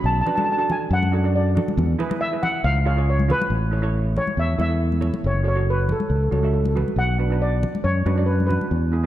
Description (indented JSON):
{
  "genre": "calypso",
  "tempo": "138 BPM",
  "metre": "4/4",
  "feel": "straight",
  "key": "unclear",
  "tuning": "A4 = 440 Hz",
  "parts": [
    { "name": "steel pan", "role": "melody", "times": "0.0-9.1 s", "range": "A4 to A5", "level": "-25 LUFS", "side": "left 1 dB", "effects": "tape echo" },
    { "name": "steel pan", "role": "accompaniment", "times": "0.0-9.1 s", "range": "B3 to E5", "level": "-28 LUFS", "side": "right 5 dB", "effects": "none" },
    { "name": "fingered electric bass", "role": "bass", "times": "0.0-9.1 s", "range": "F#1 to F#2", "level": "-21 LUFS", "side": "equal", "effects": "none" },
    { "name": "congas", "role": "percussion", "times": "0.3-8.7 s", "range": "none", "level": "-29 LUFS", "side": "left 1 dB", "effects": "none" }
  ],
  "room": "moderate concert hall reverb, RT60 1.9 s",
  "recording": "dark, warm production",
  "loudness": "-19 LUFS",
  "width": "side -13 dB against mid",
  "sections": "0.0-3.5 A section; 3.5-9.1 B section",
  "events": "steel pan solo 0.0-3.5",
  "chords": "0.0 Bm; 1.8 E; 2.6 C#; 3.5 Aadd9; 5.2 F#m; 7.0 Bmadd9",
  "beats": "| 0.04 0.48 0.91 1.34 | 1.77 2.21 2.64 3.07 | 3.51 3.94 4.37 4.81 | 5.24 5.67 6.11 6.54 | 6.98 7.41 7.84 8.28 | 8.71"
}